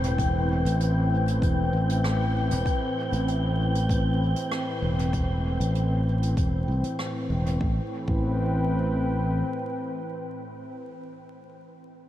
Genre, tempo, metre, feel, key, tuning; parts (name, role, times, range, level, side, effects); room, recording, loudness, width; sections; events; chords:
ambient dub; 97 BPM; 4/4; straight; A minor; A4 = 439 Hz
warm analog pad; sustained chords; 0.0-10.8 s; A2 to G5; -29 LUFS; equal; chorus
fingered electric bass; bass; 0.0-9.4 s; E1 to C2; -25 LUFS; equal
jazz brush drum kit; drums; 0.0-7.6 s; hi-hat, rim click; -40 LUFS; right 2 dB; dub echo
wind-like tuned noise texture; texture; 0.0-7.6 s; G5; -34 LUFS; left 4 dB; built-in reverb
electronic kick drum; drums; 0.2-8.3 s; -27 LUFS; equal
moderate huge ambient reverb, RT60 7.9 s; dreamy mix soaked in reverb, vinyl crackle; -23 LUFS; side -13 dB against mid
0.0-7.6 A section; 7.6-10.1 B section
0.0 Am7